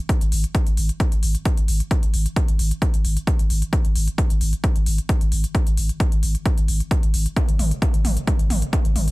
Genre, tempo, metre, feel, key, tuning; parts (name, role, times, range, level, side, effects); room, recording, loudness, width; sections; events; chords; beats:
driving peak-time techno; 132 BPM; 4/4; straight; A4 = 444 Hz
electronic kick drum; drums; 0.1-8.8 s; -20 LUFS; equal
techno drum kit; drums; 0.1-9.1 s; hi-hat, toms; -29 LUFS; equal; sidechain pumping on hats, sidechain pumping on toms
saturated sub bass; bass; 0.2-9.1 s; G#1; -23 LUFS; equal; overdrive, sidechain pumping, low-pass filter
little or no reverb; -18 LUFS; side -22 dB against mid
0.0-9.1 A section
| 0.09 0.55 1.00 1.46 | 1.91 2.37 2.82 3.27 | 3.73 4.18 4.64 5.09 | 5.55 6.00 6.46 6.91 | 7.37 7.82 8.27 8.73